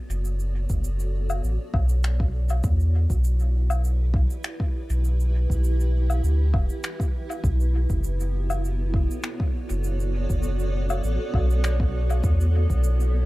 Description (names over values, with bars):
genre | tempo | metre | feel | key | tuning
ambient dub | 100 BPM | 4/4 | swing 54% on 16ths | B minor | A4 = 437 Hz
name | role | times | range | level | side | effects
granular cloud pad | sustained chords | 0.0-13.3 s | B3 to D5 | -33 LUFS | right 2 dB | built-in reverb, vintage 12-bit sampler grit
warm sub bass | bass | 0.1-13.3 s | E1 to E2 | -22 LUFS | equal | none
cabasa, woodblock and finger snaps | drums | 0.1-13.1 s | none | -34 LUFS | left 3 dB | dub echo
electronic kick drum | drums | 0.7-12.8 s | none | -25 LUFS | equal | none
room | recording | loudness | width
studio reverb | dark, warm production | -21 LUFS | side -19 dB against mid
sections
0.0-13.3 A section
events
fade-in on ambient pad 0.0-13.3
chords
0.0 Bm7; 2.6 Em; 7.4 Bm7; 12.2 Em